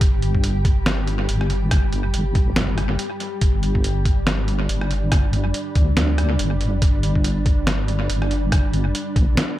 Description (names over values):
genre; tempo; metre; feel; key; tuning
deep dubstep; 141 BPM; 4/4; swing 57% on 16ths, half-time; unclear; A4 = 440 Hz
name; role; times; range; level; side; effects
granular cloud pad; sustained chords; 0.0-9.6 s; G3 to G4; -28 LUFS; equal; built-in reverb
deep soft wobble bass; bass; 0.0-9.4 s; G1 to D2; -21 LUFS; equal; chorus
electronic kick drum; drums; 0.0-9.3 s; none; -19 LUFS; equal; none
trip hop sampler-style drum kit; drums; 0.0-9.5 s; hi-hat, rim click, snare drum; -25 LUFS; equal; tape echo
room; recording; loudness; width
little or no reverb; echo-heavy mix; -18 LUFS; side -14 dB against mid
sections
0.0-9.6 A section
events
break 9.4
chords
0.0 G5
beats
| 0.01 0.44 0.86 1.29 | 1.71 2.14 2.56 2.99 | 3.42 3.84 4.27 4.69 | 5.12 5.54 5.97 6.39 | 6.82 7.25 7.67 8.10 | 8.52 8.95 9.37